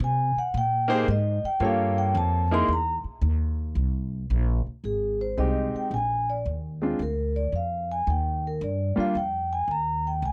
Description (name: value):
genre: jazz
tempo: 111 BPM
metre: 4/4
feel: swing 67% on 8ths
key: unclear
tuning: A4 = 436 Hz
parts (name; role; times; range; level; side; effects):
- vibraphone with soft mallets; melody; 0.0-10.3 s; Ab4 to C6; -29 LUFS; equal; none
- upright bass; bass; 0.0-10.3 s; Ab1 to C3; -29 LUFS; equal; none
- clear grand piano; accompaniment; 0.9-9.1 s; G3 to Db5; -29 LUFS; equal; none
room: studio reverb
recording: dry, close 1970s-style studio recording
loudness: -26 LUFS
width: mono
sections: 0.0-3.8 A section; 3.8-10.3 B section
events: vibraphone solo 0.0-3.8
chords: 0.0 Abmaj9; 1.6 Gm7b5; 2.7 Eb5; 3.8 Abmaj9; 5.9 Bb7; 8.1 Eb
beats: 0.00 0.54 1.07 | 1.61 2.15 2.69 3.23 | 3.77 4.30 4.84 5.38 | 5.92 6.46 7.00 7.54 | 8.08 8.62 9.16 9.70 | 10.23